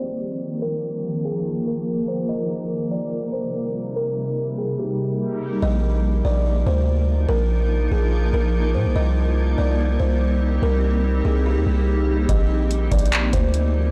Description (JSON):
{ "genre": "hip hop, atmospheric cloud-rap", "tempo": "144 BPM", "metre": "4/4", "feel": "half-time", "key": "unclear", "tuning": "A4 = 440 Hz", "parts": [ { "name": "buzzing kalimba", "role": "melody", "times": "0.0-13.5 s", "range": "G4 to Eb5", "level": "-30 LUFS", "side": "equal", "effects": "delay" }, { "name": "granular cloud pad", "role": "sustained chords", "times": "0.0-13.9 s", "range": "C3 to Bb4", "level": "-28 LUFS", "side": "equal", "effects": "built-in reverb, sidechain pumping" }, { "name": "long sustained 808-style bass", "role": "bass", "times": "5.6-13.9 s", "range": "Bb1 to Bb2", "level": "-22 LUFS", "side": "equal", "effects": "none" }, { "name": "booming analog drum machine", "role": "drums", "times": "12.3-13.6 s", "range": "handclaps, hi-hat, kick drum", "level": "-22 LUFS", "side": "equal", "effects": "none" } ], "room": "digital ambience", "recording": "blown-out, overdriven recording, overdrive, low-pass filter", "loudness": "-22 LUFS", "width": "mono", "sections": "0.0-5.6 A section; 5.6-13.9 B section", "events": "filter sweep 0.0-5.6", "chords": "0.0 Bbsus4; 2.3 Cm7; 5.6 Bbsus4; 9.0 Cm7; 12.3 Bbsus4", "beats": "0.21 | 0.62 1.04 1.46 1.87 | 2.29 2.71 3.12 3.54 | 3.96 4.37 4.79 5.21 | 5.62 6.04 6.46 6.87 | 7.29 7.71 8.12 8.54 | 8.96 9.37 9.79 10.21 | 10.62 11.04 11.46 11.87 | 12.29 12.71 13.12 13.54" }